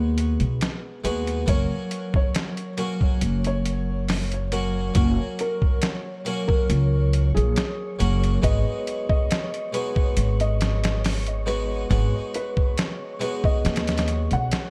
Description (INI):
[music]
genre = trip hop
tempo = 69 BPM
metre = 4/4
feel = straight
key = G# minor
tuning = A4 = 439 Hz
[part]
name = harpsichord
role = accompaniment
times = 0.0-14.7 s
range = F#3 to F#4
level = -32 LUFS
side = equal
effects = harmonic tremolo, tape echo
[part]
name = upright bass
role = bass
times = 0.0-14.5 s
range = F#1 to D#2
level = -25 LUFS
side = equal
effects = none
[part]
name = trip hop sampler-style drum kit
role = drums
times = 0.2-14.7 s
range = hi-hat, kick drum, snare drum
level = -26 LUFS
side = equal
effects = overdrive, small room ambience
[part]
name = felt-muted upright piano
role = melody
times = 1.5-14.7 s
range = G#4 to F#5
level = -34 LUFS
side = equal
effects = tape echo
[part]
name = wind-like tuned noise texture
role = texture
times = 2.6-14.7 s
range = C#5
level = -42 LUFS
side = equal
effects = built-in reverb
[sound]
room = studio reverb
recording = dark, warm production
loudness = -24 LUFS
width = mono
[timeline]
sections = 0.0-14.7 A section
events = none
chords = 0.0 G#m7; 1.5 F#; 8.4 G#m7